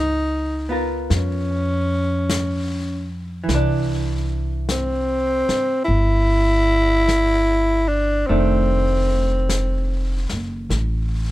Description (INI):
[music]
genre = jazz ballad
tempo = 50 BPM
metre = 4/4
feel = swing 68% on 8ths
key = unclear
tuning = A4 = 441 Hz
[part]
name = growling tenor saxophone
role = melody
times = 0.0-10.3 s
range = C4 to E4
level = -20 LUFS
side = equal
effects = none
[part]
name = vintage hollow-body jazz guitar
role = accompaniment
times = 0.0-11.3 s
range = Eb3 to A#4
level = -26 LUFS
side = right 2 dB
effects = none
[part]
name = upright bass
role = bass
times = 0.0-11.3 s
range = F1 to E#2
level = -21 LUFS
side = equal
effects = none
[part]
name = vintage brush drum kit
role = drums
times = 1.1-11.3 s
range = brushed snare drum, hi-hat, snare drum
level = -30 LUFS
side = left 2 dB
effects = none
[sound]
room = little or no reverb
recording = close, detailed microphones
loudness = -18 LUFS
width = side -16 dB against mid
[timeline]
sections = 0.0-11.3 A section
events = none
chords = 0.0 C#13; 3.5 Cadd9; 8.3 F6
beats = 1.10 2.29 | 3.48 4.68 5.88 7.09 | 8.29 9.49 10.70